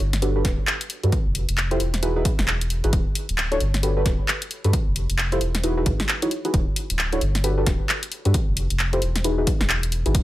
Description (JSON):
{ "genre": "UK garage, two-step garage", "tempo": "133 BPM", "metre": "4/4", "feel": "swing 61% on 16ths", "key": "unclear", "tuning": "A4 = 440 Hz", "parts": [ { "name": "soft dub sub bass", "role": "bass", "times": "0.0-10.2 s", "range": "D1 to G2", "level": "-23 LUFS", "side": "equal", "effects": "tube saturation" }, { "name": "garage drum kit", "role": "drums", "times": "0.0-10.2 s", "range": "handclaps, hi-hat, snare drum", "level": "-25 LUFS", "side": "left 1 dB", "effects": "studio ambience" }, { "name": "deep mellow chord stab", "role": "stabs", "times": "0.2-10.1 s", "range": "D4 to C#5", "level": "-26 LUFS", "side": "equal", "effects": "chorus, digital delay" }, { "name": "electronic kick drum", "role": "drums", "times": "0.4-10.2 s", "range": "none", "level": "-23 LUFS", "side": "equal", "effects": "studio ambience" } ], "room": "little or no reverb", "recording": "none", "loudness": "-20 LUFS", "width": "side -15 dB against mid", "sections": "0.0-10.2 A section", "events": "none", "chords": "0.0 Gmaj9; 1.1 Fmaj9; 1.8 Emaj9; 2.9 Dmaj9; 3.6 Gmaj9; 4.7 Fmaj9; 5.4 Emaj9; 6.5 Dmaj9; 7.2 Gmaj9; 8.3 Fmaj9; 9.0 Emaj9" }